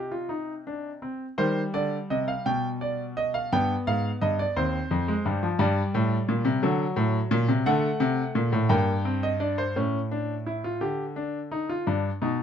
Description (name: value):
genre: classical, baroque-style 3-part fugue for grand piano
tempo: 57 BPM (dotted quarters)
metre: 6/8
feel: straight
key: C minor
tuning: A4 = 440 Hz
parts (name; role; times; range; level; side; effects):
- clear grand piano; solo; 0.0-12.4 s; Eb2 to G5; -24 LUFS; equal; none
room: little or no reverb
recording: close, detailed microphones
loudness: -24 LUFS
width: side -8 dB against mid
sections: 0.0-1.4 A section; 1.4-9.8 B section; 9.8-12.4 A section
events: none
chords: 0.0 Cm; 2.5 G/B; 3.5 G7; 4.6 Cm/Eb; 5.6 Gm; 6.6 D7; 8.7 Gm; 9.8 A; 10.8 Dm; 11.9 G